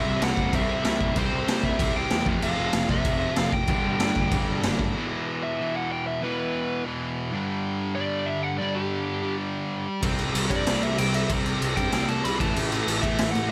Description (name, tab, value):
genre	punk rock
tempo	190 BPM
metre	4/4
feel	straight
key	unclear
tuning	A4 = 438 Hz
part	biting lead guitar	melody	0.0-13.5 s	G4 to B5	-31 LUFS	equal	overdrive
part	crunchy overdriven guitar	riff	0.0-13.5 s	E2 to C4	-33 LUFS	equal	none
part	distorted electric guitar	riff	0.0-13.5 s	E2 to C4	-33 LUFS	equal	overdrive
part	fuzz picked electric bass	bass	0.1-4.8, 10.0-13.5 s	F1 to C3	-33 LUFS	equal	overdrive
part	raw garage drum kit	drums	0.2-4.9, 10.0-13.4 s	crash cymbal, kick drum, snare drum	-29 LUFS	equal	none
room	light reverb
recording	none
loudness	-26 LUFS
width	mono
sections	0.0-5.0 A section; 5.0-13.5 B section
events	half time 5.0-13.5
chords	0.0 C; 2.3 F5; 3.7 G5; 5.0 E5; 7.3 G5; 10.0 C5; 12.4 A5